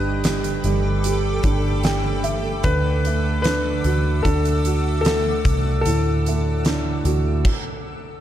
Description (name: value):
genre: pop ballad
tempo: 75 BPM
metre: 4/4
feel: straight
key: unclear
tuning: A4 = 444 Hz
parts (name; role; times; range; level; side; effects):
- warm concert grand piano; melody; 0.0-8.2 s; A4 to B4; -27 LUFS; left 4 dB; none
- felt-muted upright piano; accompaniment; 0.0-7.5 s; A2 to G5; -25 LUFS; right 4 dB; none
- granular cloud pad; sustained chords; 0.0-7.4 s; A4 to E6; -30 LUFS; equal; built-in reverb
- vintage muted fingered electric bass; bass; 0.0-7.4 s; G1 to D2; -22 LUFS; equal; none
- huge arena drum kit; drums; 0.2-7.6 s; crash cymbal, hi-hat, kick drum, snare drum; -25 LUFS; equal; none
room: small room ambience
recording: dark, warm production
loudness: -18 LUFS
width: side -11 dB against mid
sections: 0.0-8.2 A section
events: felt piano fill 1.4-2.6; stop 7.5-8.2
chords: 0.0 Gadd9; 2.6 Dadd9